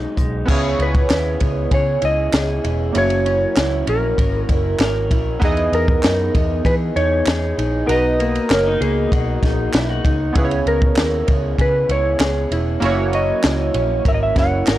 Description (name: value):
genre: indie pop, bedroom pop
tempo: 97 BPM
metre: 4/4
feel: straight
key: C# dorian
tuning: A4 = 440 Hz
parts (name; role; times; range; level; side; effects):
- clean lap steel guitar; melody; 0.0-14.8 s; F#4 to F#5; -22 LUFS; equal; analog chorus
- chorused retro synth keys; accompaniment; 0.0-14.8 s; F#3 to A#5; -24 LUFS; right 2 dB; none
- electric guitar through a small old amp; accompaniment; 0.0-14.8 s; B2 to A#4; -24 LUFS; equal; wide subtle chorus, warbly pitch drift
- vintage muted picked electric bass; bass; 0.0-14.8 s; E1 to E3; -22 LUFS; equal; none
- compact cocktail drum kit; drums; 0.2-14.8 s; crash cymbal, hi-hat, kick drum, ride cymbal, snare drum; -19 LUFS; equal; none
- group handclap; percussion; 1.1-14.8 s; none; -29 LUFS; right 2 dB; none
room: small room ambience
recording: dry, gritty hardware recording, transformer saturation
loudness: -15 LUFS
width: side -14 dB against mid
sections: 0.5-14.8 A section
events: none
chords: 0.5 C#m7; 3.0 F#7; 5.4 Emaj7; 7.9 Bmaj7; 10.4 C#m7; 12.8 F#7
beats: | 0.48 1.10 1.72 2.33 | 2.95 3.57 4.18 4.80 | 5.42 6.04 6.65 7.27 | 7.89 8.50 9.12 9.74 | 10.35 10.97 11.59 12.20 | 12.82 13.44 14.05 14.67